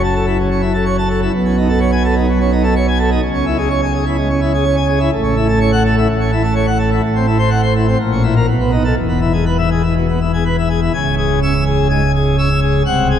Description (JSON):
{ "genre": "classical, organ toccata", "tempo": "126 BPM", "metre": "4/4", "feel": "straight", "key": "E major", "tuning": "A4 = 440 Hz", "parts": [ { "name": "pipe organ, plenum", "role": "solo", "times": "0.0-13.2 s", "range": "B#0 to E6", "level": "-13 LUFS", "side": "equal", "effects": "none" } ], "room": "wet cathedral reverb, RT60 5.3 s", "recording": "none", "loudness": "-13 LUFS", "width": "side -9 dB against mid", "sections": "0.0-10.9 A section; 10.9-13.2 B section", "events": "none", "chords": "0.0 F#m7; 1.3 B13; 3.2 C#m; 5.1 F#m7/A; 7.0 F#m7b5/A; 8.0 A#dim; 8.5 B7; 9.0 E; 10.9 C#m" }